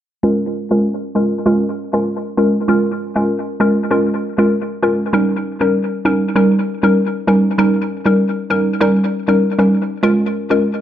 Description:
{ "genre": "afrobeats", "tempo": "98 BPM", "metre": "4/4", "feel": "swing 55% on 16ths", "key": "Bb dorian", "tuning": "A4 = 441 Hz", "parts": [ { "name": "hollow square pluck", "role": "solo", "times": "0.2-10.7 s", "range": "G3 to Bb4", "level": "-14 LUFS", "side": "equal", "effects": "chorus, low-pass filter, digital delay" } ], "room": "wet studio reverb, RT60 0.7 s", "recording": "dark, warm production", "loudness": "-14 LUFS", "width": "side -11 dB against mid", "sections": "0.2-10.0 A section", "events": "filter sweep on synth pluck 0.2-10.0", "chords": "0.2 Bbm7; 5.1 Eb7; 10.0 Bbm7", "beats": "| 0.24 0.85 1.46 2.07 | 2.69 3.30 3.91 4.52 | 5.13 5.75 6.36 6.97 | 7.58 8.20 8.81 9.42 | 10.03 10.64" }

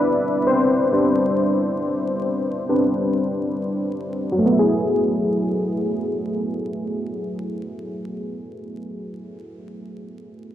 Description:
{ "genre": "hip hop", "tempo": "68 BPM", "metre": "4/4", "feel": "swing 56% on 16ths", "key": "unclear", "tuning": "A4 = 440 Hz", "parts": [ { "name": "warm analog keys", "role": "accompaniment", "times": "0.0-10.5 s", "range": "F#3 to E5", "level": "-20 LUFS", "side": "equal", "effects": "chorus, low-pass filter" } ], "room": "light reverb, small room ambience", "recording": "vinyl crackle", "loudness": "-19 LUFS", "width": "side -11 dB against mid", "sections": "0.0-4.4 A section; 4.4-8.0 B section", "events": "synth keys solo 0.0-4.4; filter sweep on synth keys 0.0-4.4", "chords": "0.0 Gadd11; 4.4 F#m11", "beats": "0.03 | 0.91 1.80 2.68 3.56 | 4.44 5.33 6.21 7.09" }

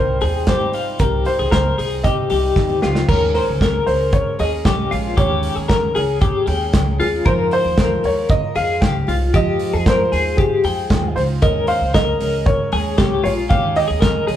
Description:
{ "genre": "jangly indie pop", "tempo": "115 BPM", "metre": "4/4", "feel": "straight", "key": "unclear", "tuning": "A4 = 440 Hz", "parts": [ { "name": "warm upright piano", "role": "melody", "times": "0.0-14.4 s", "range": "G4 to F5", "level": "-22 LUFS", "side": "equal", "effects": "none" }, { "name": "picked steel-string acoustic guitar", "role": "accompaniment", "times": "0.0-14.4 s", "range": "C3 to C5", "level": "-27 LUFS", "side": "right 5 dB", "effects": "none" }, { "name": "twelve-string electric guitar", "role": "arpeggios", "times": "0.0-14.4 s", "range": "F4 to G5", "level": "-21 LUFS", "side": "left 4 dB", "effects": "tremolo" }, { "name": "upright bass", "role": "bass", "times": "0.0-14.4 s", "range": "Bb1 to C3", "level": "-23 LUFS", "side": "equal", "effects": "none" }, { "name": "modern studio drum kit", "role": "drums", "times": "0.2-14.4 s", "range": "crash cymbal, hi-hat, kick drum, snare drum", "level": "-20 LUFS", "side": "right 1 dB", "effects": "none" } ], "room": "moderate large studio reverb, RT60 1.2 s", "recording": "band playing live in one room, faint mains hum", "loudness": "-15 LUFS", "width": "side -11 dB against mid", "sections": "0.0-3.1 A section; 3.1-14.4 B section", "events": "drum fill 2.6-3.1", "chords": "0.0 Cm; 3.1 Eb7sus4; 7.3 Fm7; 11.4 Eb7sus4", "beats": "0.48 | 1.00 1.52 2.04 2.56 | 3.09 3.61 4.13 4.65 | 5.17 5.70 6.22 6.74 | 7.26 7.78 8.30 8.82 | 9.34 9.87 10.39 10.91 | 11.43 11.95 12.47 12.99 | 13.51 14.03" }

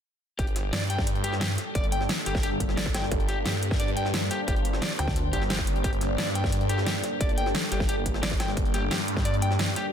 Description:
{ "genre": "dark technical drum and bass", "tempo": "176 BPM", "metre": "4/4", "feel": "straight", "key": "G minor", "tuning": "A4 = 440 Hz", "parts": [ { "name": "deep dark ambient pad", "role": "sustained chords", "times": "1.0-9.9 s", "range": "G3 to C5", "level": "-32 LUFS", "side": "left 1 dB", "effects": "chorus, built-in reverb, sidechain pumping" }, { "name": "electric guitar at the edge of break-up", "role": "arpeggios", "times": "0.4-9.9 s", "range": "G4 to G5", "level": "-33 LUFS", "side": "left 2 dB", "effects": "spring reverb, sidechain pumping, ping-pong delay" }, { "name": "phased detuned saw bass", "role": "bass", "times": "0.4-9.7 s", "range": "G1 to G2", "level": "-29 LUFS", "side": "equal", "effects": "phaser, tube saturation, sidechain pumping" }, { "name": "dubstep drum kit", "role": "drums", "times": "0.4-9.8 s", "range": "hi-hat, snare drum", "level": "-31 LUFS", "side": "equal", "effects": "none" }, { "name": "electronic kick drum", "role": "drums", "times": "0.4-9.2 s", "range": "none", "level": "-28 LUFS", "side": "equal", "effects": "distortion" }, { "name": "jungle sampler-style drum kit", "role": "drums", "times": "0.4-9.8 s", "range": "hi-hat, snare drum", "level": "-40 LUFS", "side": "equal", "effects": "high-pass filter on hats, high-pass filter on snare" }, { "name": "pulsing pluck wobble bass", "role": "bass", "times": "5.0-5.3 s", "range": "D2", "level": "-28 LUFS", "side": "equal", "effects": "chorus" } ], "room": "little or no reverb", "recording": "dense, heavily limited modern master", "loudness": "-24 LUFS", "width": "side -8 dB against mid", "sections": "0.4-9.9 A section", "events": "none", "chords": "0.4 Gmadd9", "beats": "| 0.39 0.73 1.07 1.41 | 1.75 2.09 2.43 2.77 | 3.12 3.46 3.80 4.14 | 4.48 4.82 5.16 5.50 | 5.84 6.18 6.52 6.87 | 7.21 7.55 7.89 8.23 | 8.57 8.91 9.25 9.59" }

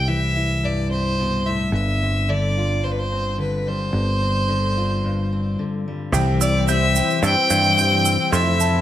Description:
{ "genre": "indie folk with a building arrangement", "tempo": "109 BPM", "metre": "4/4", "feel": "straight", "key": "C major", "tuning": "A4 = 440 Hz", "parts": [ { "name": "rich fiddle", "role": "melody", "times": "0.0-8.8 s", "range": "B4 to G5", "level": "-22 LUFS", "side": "equal", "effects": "slapback echo" }, { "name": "fingerpicked steel-string acoustic guitar", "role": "accompaniment", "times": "0.0-8.3 s", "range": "G2 to F4", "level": "-26 LUFS", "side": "left 2 dB", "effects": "none" }, { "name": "picked electric bass", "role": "bass", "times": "0.0-8.8 s", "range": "G1 to G2", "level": "-22 LUFS", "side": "equal", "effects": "none" }, { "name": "warm trombone", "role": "second line", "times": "6.1-8.8 s", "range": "C4 to E4", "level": "-26 LUFS", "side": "left 4 dB", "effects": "slapback echo" }, { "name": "picked twelve-string acoustic guitar", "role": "accompaniment", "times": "6.1-8.8 s", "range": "C3 to E4", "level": "-26 LUFS", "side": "left 8 dB", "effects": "none" }, { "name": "warm baby grand piano", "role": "accompaniment", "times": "6.1-8.8 s", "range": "F1 to E5", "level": "-32 LUFS", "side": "equal", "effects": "none" }, { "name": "brassy analog pad", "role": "sustained chords", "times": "6.1-8.8 s", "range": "C3 to C5", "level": "-32 LUFS", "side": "equal", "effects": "none" }, { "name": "clear upright piano", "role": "arpeggios", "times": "6.1-8.8 s", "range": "G5 to G6", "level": "-27 LUFS", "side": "right 8 dB", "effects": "none" }, { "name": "tube shaker", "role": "percussion", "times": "6.1-8.7 s", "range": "none", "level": "-28 LUFS", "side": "right 12 dB", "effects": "none" } ], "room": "light reverb, studio reverb", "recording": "none", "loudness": "-18 LUFS", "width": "side -12 dB against mid", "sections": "0.0-6.1 A section; 6.1-8.8 B section", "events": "break 5.6-6.1", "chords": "0.0 Cmaj7; 1.7 G7sus4; 6.1 C", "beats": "0.07 0.62 1.18 | 1.73 2.28 2.83 3.38 | 3.93 4.49 5.04 5.58 | 6.13 6.68 7.23 7.78 | 8.33" }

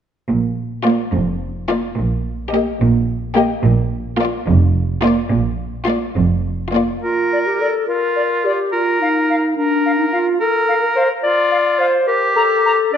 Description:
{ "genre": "cinematic, playful, whimsical film cue", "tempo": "71 BPM (dotted quarters)", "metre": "6/8", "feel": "straight", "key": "Bb major", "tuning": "A4 = 441 Hz", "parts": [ { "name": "clear chamber cello section", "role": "bass", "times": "0.3-6.9 s", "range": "F2 to Bb2", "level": "-20 LUFS", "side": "right 3 dB", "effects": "none" }, { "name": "rich chamber double bass section", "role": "bass", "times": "0.3-6.9 s", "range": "F1 to Bb1", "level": "-20 LUFS", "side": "right 2 dB", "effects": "none" }, { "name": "clear chamber violin section", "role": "melody", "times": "0.8-7.0 s", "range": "D5 to Eb5", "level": "-27 LUFS", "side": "left 7 dB", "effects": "none" }, { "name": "rich chamber violin section", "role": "second line", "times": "0.8-7.0 s", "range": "F4 to G4", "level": "-22 LUFS", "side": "left 4 dB", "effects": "none" }, { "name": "rich chamber viola section", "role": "accompaniment", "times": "0.9-7.0 s", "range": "Bb3", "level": "-20 LUFS", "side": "right 2 dB", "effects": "none" }, { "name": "clear oboe", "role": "second line", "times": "7.0-13.0 s", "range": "D4 to Bb4", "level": "-18 LUFS", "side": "right 1 dB", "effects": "none" }, { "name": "dark clarinet", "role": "second line", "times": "7.0-13.0 s", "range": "D4 to D5", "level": "-17 LUFS", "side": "left 2 dB", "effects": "none" }, { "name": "silver concert flute", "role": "second line", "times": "7.3-12.7 s", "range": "D5 to Bb5", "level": "-24 LUFS", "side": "left 2 dB", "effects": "none" } ], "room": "moderate scoring stage reverb, RT60 1.6 s", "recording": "none", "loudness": "-15 LUFS", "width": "side -8 dB against mid", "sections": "0.3-7.0 A section; 7.0-13.0 B section", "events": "none", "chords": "0.3 Bb; 2.0 Eb/Bb; 3.6 Bb/F; 8.7 Bbadd11; 10.4 Bb; 12.1 Gm", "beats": "| 0.29 1.14 | 1.98 2.81 | 3.64 4.48 | 5.31 6.16 | 7.03 7.88 | 8.72 9.57 | 10.41 11.24 | 12.08 12.94" }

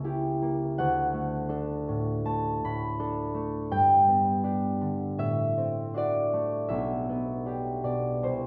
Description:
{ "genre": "classical, solo harp piece", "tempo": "81 BPM", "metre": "4/4", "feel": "rubato", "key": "G major", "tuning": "A4 = 442 Hz", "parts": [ { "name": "concert harp", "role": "solo", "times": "0.0-8.5 s", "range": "B1 to B5", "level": "-28 LUFS", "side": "equal", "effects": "none" } ], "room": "wet recital hall reverb, RT60 1.5 s", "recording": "none", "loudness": "-28 LUFS", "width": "mono", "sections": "0.0-8.5 A section", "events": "none", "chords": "0.0 C#dim7; 0.8 D; 3.7 G; 5.2 D7/A; 6.7 G/B", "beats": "0.05 | 0.78 1.50 2.25 2.99 | 3.73 4.46 5.20 5.96 | 6.72 7.46 8.22" }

